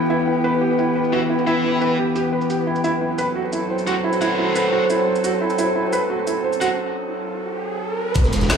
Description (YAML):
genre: dark technical drum and bass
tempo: 175 BPM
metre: 4/4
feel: straight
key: unclear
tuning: A4 = 440 Hz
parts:
  - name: metallic inharmonic drone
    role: sustained chords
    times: 0.0-8.1 s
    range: E3 to A4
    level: -22 LUFS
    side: left 1 dB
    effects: chorus, built-in reverb, sidechain pumping
  - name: felt-muted upright piano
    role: arpeggios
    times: 0.0-6.7 s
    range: E4 to C5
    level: -23 LUFS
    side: right 4 dB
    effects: sidechain pumping, tape echo
  - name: drum and bass drum kit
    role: drums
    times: 0.0-8.6 s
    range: hi-hat, shaker, snare drum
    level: -28 LUFS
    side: equal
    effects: overdrive, low-pass filter on snare, low-pass filter on hats, low-pass filter on perc
  - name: ethereal airy pad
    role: texture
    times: 0.0-8.6 s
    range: E4 to A5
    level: -25 LUFS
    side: equal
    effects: ensemble chorus, built-in reverb, sidechain pumping
  - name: tight distorted guitar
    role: stabs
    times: 1.1-6.7 s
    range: E4 to F#5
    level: -27 LUFS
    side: left 1 dB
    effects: distortion, low-pass filter, tape echo
  - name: riser and impact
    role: sound effects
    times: 6.2-8.6 s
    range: none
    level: -27 LUFS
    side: equal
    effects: none
  - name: crunchy breakbeat drum kit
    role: drums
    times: 8.1-8.6 s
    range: hi-hat, snare drum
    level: -28 LUFS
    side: equal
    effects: high-pass filter on hats, high-pass filter on snare, high-pass filter on room
  - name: phased detuned saw bass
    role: bass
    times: 8.2-8.6 s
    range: E1 to B1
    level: -21 LUFS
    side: right 1 dB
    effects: phaser, overdrive
  - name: electronic kick drum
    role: drums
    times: 8.2 s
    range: none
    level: -18 LUFS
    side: equal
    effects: overdrive
room: moderate plate reverb, RT60 1.1 s, studio reverb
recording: none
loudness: -18 LUFS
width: side -6 dB against mid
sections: 0.0-8.2 A section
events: riser 6.2-8.2; break 6.8-8.2; impact 8.2-8.6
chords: 0.0 Em; 2.7 F#dim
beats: 0.27 0.61 0.96 | 1.30 1.64 1.98 2.33 | 2.67 3.01 3.36 3.70 | 4.04 4.38 4.73 5.07 | 5.41 5.76 6.10 6.44 | 6.78 7.13 7.47 7.81 | 8.16 8.50